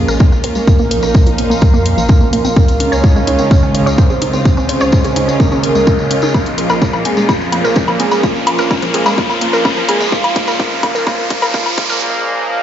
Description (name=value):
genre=melodic techno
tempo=127 BPM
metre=4/4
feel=straight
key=Bb minor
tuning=A4 = 438 Hz
part: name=fat analog lead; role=melody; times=0.0-12.0 s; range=F4 to Db5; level=-19 LUFS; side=right 1 dB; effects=lush chorus, sidechain pumping, ping-pong delay
part: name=warm symphonic string section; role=sustained chords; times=0.0-12.0 s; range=Db3 to F4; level=-24 LUFS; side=left 1 dB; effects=sidechain pumping
part: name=wide unison pluck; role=arpeggios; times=0.0-12.0 s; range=F3 to Db5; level=-20 LUFS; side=equal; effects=sidechain pumping, tape echo
part: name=brassy analog pad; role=stabs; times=0.0-12.6 s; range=Bb2 to Db4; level=-20 LUFS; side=right 3 dB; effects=chorus, sidechain pumping, tape echo
part: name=swelling detuned saw bass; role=bass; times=0.0-11.8 s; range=Ab1 to F2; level=-23 LUFS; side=equal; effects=tube saturation, sidechain pumping
part: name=riser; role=sound effects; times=1.8-12.0 s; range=none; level=-22 LUFS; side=equal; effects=none
part: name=granular cloud pad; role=texture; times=0.0-12.0 s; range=Db4 to C6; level=-23 LUFS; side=equal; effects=built-in reverb, sidechain pumping
part: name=tambourine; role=percussion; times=0.1-12.0 s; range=none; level=-29 LUFS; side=left 2 dB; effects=none
part: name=electronic kick drum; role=drums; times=0.2-11.9 s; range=none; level=-11 LUFS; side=equal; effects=overdrive, small room ambience
part: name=electronic hi-hat and woodblock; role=drums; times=0.4-11.9 s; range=none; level=-20 LUFS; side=left 2 dB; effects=overdrive, small room ambience
room=light reverb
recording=played on a big sound system in a bare room, stone room reverb, high-pass filter, nothing above 7.7 kHz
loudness=-11 LUFS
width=side -10 dB against mid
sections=0.0-12.6 A section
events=build-up 0.0-12.6; filter sweep on synth arpeggio sound 0.0-12.6; filter sweep on analog synth lead 0.0-12.6; filter sweep on analog synth pad 0.0-12.6; filter sweep 0.0-12.6; riser 1.8-12.0; drum fill 6.3-12.0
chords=0.0 Bbm; 2.6 Db6; 6.3 Bbm; 10.1 Db6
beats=0.20 | 0.68 1.15 1.62 2.09 | 2.56 3.04 3.51 3.98 | 4.46 4.93 5.40 5.87 | 6.34 6.82 7.29 7.76 | 8.23 8.71 9.18 9.65 | 10.12 10.60 11.07 11.54 | 12.01 12.49